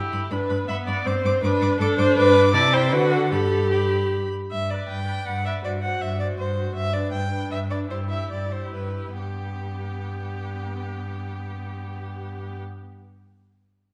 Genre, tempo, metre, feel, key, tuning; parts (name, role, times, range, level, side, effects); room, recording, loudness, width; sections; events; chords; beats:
quick classical-period movement for string quartet; 132-164 BPM; 3/4; rubato; G major; A4 = 440 Hz
dark violin; second line; 0.0-12.6 s; G4 to E5; -26 LUFS; equal
rich viola; accompaniment; 0.0-12.6 s; B3 to B4; -31 LUFS; equal
warm violin; melody; 0.1-12.6 s; G4 to D6; -34 LUFS; equal
rich cello; bass; 0.1-12.6 s; G2 to D3; -29 LUFS; equal
wet recital hall reverb, RT60 1.5 s; -24 LUFS; mono
0.0-4.5 A section; 4.5-9.2 B section; 9.2-11.8 C section
slowing down 6.2-9.2
0.0 G; 2.5 Am/C; 2.9 D; 3.3 G; 5.6 D7 (rootless); 6.8 G; 7.9 G6; 9.2 G
0.32 0.69 | 1.06 1.43 1.80 | 2.17 2.55 2.93 | 3.32 3.72 4.12 | 4.51 4.89 5.27 | 5.65 6.02 6.39 | 6.76 7.13 7.52 | 7.91 8.32 8.74 | 9.19 9.63 10.07 | 10.52 10.96 11.40